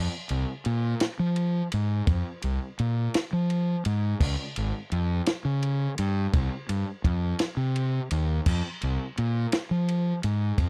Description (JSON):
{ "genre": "indie rock", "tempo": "56 BPM (dotted quarters)", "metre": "6/8", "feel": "straight", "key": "F minor", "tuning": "A4 = 440 Hz", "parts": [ { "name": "fuzz fingered electric bass", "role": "bass", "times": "0.0-10.7 s", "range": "Ab1 to F3", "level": "-28 LUFS", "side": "equal", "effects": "overdrive" }, { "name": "compact cocktail drum kit", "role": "drums", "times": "0.3-10.7 s", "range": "crash cymbal, kick drum, ride cymbal, snare drum", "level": "-31 LUFS", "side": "equal", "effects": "none" } ], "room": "little or no reverb", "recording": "dry, close 1970s-style studio recording", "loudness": "-27 LUFS", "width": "mono", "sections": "0.0-10.7 A section", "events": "none", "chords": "none" }